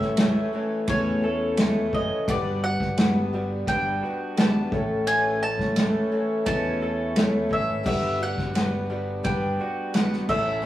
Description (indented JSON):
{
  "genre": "folk rock and heartland rock",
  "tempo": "86 BPM",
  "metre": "4/4",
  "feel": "straight",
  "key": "unclear",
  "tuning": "A4 = 440 Hz",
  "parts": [
    { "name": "mandolin", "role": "melody", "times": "0.0-10.6 s", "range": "C#5 to A5", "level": "-28 LUFS", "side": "equal", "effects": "none" },
    { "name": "clear upright piano", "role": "accompaniment", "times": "0.0-10.7 s", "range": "G3 to G5", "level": "-37 LUFS", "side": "equal", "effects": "none" },
    { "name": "picked twelve-string acoustic guitar", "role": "accompaniment", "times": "0.0-10.7 s", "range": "A2 to A4", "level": "-31 LUFS", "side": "left 3 dB", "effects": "none" },
    { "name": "mellow accordion", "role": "sustained chords", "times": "0.0-10.7 s", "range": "G3 to E4", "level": "-36 LUFS", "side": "equal", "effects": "none" },
    { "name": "electric guitar through a small old amp", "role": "riff", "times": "0.0-10.6 s", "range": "A2 to A4", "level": "-30 LUFS", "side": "equal", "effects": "none" },
    { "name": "fingered electric bass", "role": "bass", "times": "0.0-10.7 s", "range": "F#1 to E2", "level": "-32 LUFS", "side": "equal", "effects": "none" },
    { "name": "unplugged drum kit", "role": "drums", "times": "0.0-10.4 s", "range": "crash cymbal, kick drum, ride cymbal, snare drum", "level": "-24 LUFS", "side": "equal", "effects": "none" }
  ],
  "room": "wet studio reverb, RT60 0.5 s",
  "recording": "rough rehearsal-room recording, studio reverb",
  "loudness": "-22 LUFS",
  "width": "side -14 dB against mid",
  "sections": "0.0-10.7 A section",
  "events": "none",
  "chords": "0.0 A; 2.3 Gmaj7; 4.7 A; 7.9 Gmaj7"
}